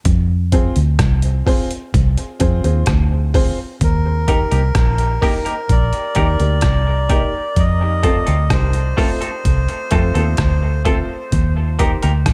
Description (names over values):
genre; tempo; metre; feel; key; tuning
dub reggae; 64 BPM; 4/4; straight; Eb major; A4 = 440 Hz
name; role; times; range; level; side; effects
vintage muted fingered electric bass; bass; 0.1-12.3 s; Bb1 to F2; -18 LUFS; equal; none
trip hop sampler-style drum kit; drums; 0.1-12.3 s; hi-hat, kick drum, rim click; -21 LUFS; equal; overdrive
warm upright piano; stabs; 0.5-12.0 s; A3 to C5; -27 LUFS; equal; dub echo
melodica; melody; 3.8-10.8 s; Bb4 to Eb5; -26 LUFS; equal; dub echo
semi-hollow electric guitar; accompaniment; 4.3-12.1 s; A3 to Bb4; -28 LUFS; equal; lush chorus, dub echo
room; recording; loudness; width
little or no reverb; echo-heavy mix; -17 LUFS; mono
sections
0.0-3.8 A section; 3.8-12.3 B section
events
break 0.0-3.8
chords
0.1 Fm; 3.8 Eb; 7.6 F; 11.3 Eb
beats
| 0.06 1.00 1.94 2.87 | 3.81 4.75 5.69 6.63 | 7.57 8.51 9.45 10.39 | 11.33 12.27